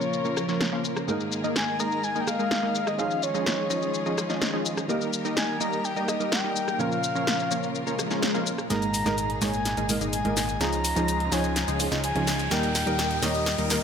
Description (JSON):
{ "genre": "EDM, festival progressive house", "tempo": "126 BPM", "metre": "4/4", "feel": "straight", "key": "unclear", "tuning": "A4 = 438 Hz", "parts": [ { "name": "breathy flute-like synth lead", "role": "melody", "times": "0.0-13.7 s", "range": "Db5 to Bb5", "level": "-30 LUFS", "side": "left 2 dB", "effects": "chorus, ping-pong delay" }, { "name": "dark baby grand piano", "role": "accompaniment", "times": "0.0-13.8 s", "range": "Ab2 to Db5", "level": "-33 LUFS", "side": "right 2 dB", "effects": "none" }, { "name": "clear symphonic string section", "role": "sustained chords", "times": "0.0-13.8 s", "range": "Bb2 to Bb4", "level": "-34 LUFS", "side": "equal", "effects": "low-pass filter" }, { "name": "supersaw stab", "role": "riff", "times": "0.0-13.8 s", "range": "F3 to F5", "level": "-29 LUFS", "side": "equal", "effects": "low-pass filter, ping-pong delay" }, { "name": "big-room dance drum kit", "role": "drums", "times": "0.0-13.8 s", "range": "hi-hat, rim click, shaker, snare drum", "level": "-29 LUFS", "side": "left 1 dB", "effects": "high-pass filter on perc, low-pass filter on perc, high-pass filter on snare, low-pass filter on snare, high-pass filter on hats, low-pass filter on hats" }, { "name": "swell and riser", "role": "sound effects", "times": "7.9-13.8 s", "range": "none", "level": "-35 LUFS", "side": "left 2 dB", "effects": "none" }, { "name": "fat analog bass", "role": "bass", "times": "8.7-13.8 s", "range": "Ab1 to Eb2", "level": "-32 LUFS", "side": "equal", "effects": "none" } ], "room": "light reverb, digital ambience", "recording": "none", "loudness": "-24 LUFS", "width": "side -7 dB against mid", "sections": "0.0-8.7 A section; 8.7-13.8 B section", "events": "swell 7.9-8.7; build-up 8.7-13.8; drum fill 8.7-13.8; riser 8.7-13.8; filter sweep on supersaw synth 8.7-13.8", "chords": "0.0 Bbm; 1.1 Absus2; 3.0 Dbadd9; 4.9 Eb; 6.8 Bbm; 8.7 Absus2; 10.6 Dbadd9; 12.5 Eb" }